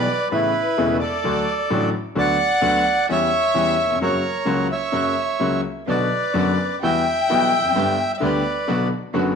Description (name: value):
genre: tango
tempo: 129 BPM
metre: 4/4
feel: rubato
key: B minor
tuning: A4 = 440 Hz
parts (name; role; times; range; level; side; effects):
- bandoneon; melody; 0.0-8.9 s; E4 to G5; -21 LUFS; right 3 dB; none
- warm violin; second line; 0.0-8.9 s; B4 to G5; -27 LUFS; left 10 dB; none
- clear concert grand piano; accompaniment; 0.0-9.3 s; E1 to G4; -22 LUFS; left 2 dB; none
- rich chamber string section; stabs; 5.9-9.3 s; G3 to G4; -30 LUFS; right 12 dB; slapback echo
room: moderate echo chamber reverb, RT60 1.6 s, small room reverb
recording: 1960s-style stereo with parts hard left and right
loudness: -18 LUFS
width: side -6 dB against mid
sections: 0.0-9.4 A section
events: none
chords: 0.3 Aadd9; 1.2 D; 2.2 Bm/D; 3.1 C#dim/E; 4.0 F#; 5.9 Bm; 6.8 Emadd9; 7.8 G; 8.7 Bm